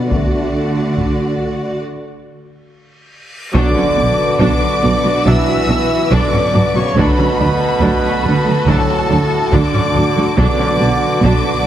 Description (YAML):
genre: cinematic, epic orchestral film score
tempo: 70 BPM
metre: 4/4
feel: straight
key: B minor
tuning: A4 = 440 Hz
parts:
  - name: warm symphonic violin section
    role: melody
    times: 0.0-11.7 s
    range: F#5 to E6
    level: -23 LUFS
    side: left 3 dB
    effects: none
  - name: warm symphonic violin section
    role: second line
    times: 0.0-11.7 s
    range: F#4 to D5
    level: -23 LUFS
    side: left 4 dB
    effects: none
  - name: rich symphonic viola section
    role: accompaniment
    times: 0.0-11.4 s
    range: F#3 to F#4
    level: -21 LUFS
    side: right 1 dB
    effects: none
  - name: mellow French horn section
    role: sustained chords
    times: 0.0-10.7 s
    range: F#3 to D4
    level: -25 LUFS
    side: left 2 dB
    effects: none
  - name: dark symphonic cello section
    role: bass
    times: 0.0-11.3 s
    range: B2 to D3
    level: -22 LUFS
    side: right 2 dB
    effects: none
  - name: clear symphonic double bass section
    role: bass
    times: 0.1-11.3 s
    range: B1 to D2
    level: -21 LUFS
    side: right 2 dB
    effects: none
  - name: taiko ensemble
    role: drums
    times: 0.1-11.7 s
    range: none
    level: -20 LUFS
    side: equal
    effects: none
  - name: reverse cymbal and impact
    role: sound effects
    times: 3.1-7.0 s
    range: none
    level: -29 LUFS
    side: equal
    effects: none
  - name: warm trumpet section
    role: stabs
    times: 3.5-11.7 s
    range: A4 to E5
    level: -20 LUFS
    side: equal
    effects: none
  - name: mellow tuba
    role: bass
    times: 3.5-11.3 s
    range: B1 to D2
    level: -22 LUFS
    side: right 2 dB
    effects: none
  - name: clear trombone section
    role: sustained chords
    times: 3.6-11.7 s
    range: A2 to E3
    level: -20 LUFS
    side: right 3 dB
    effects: none
  - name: timpani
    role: percussion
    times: 10.4-11.6 s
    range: B2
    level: -24 LUFS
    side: left 1 dB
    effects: none
room: wet concert hall reverb, RT60 2.0 s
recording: heavily compressed radio sound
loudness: -12 LUFS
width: side -11 dB against mid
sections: 0.0-3.5 A section; 3.5-11.7 A section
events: break 1.8-3.5; drum fill 2.7-3.5; reverse cymbal 3.1-3.5; impact 3.5-7.0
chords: 0.1 D; 3.5 Bm; 7.0 D; 10.4 Bm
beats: | 0.12 0.97 1.83 2.69 | 3.54 4.40 5.25 6.11 | 6.97 7.82 8.68 9.53 | 10.39 11.24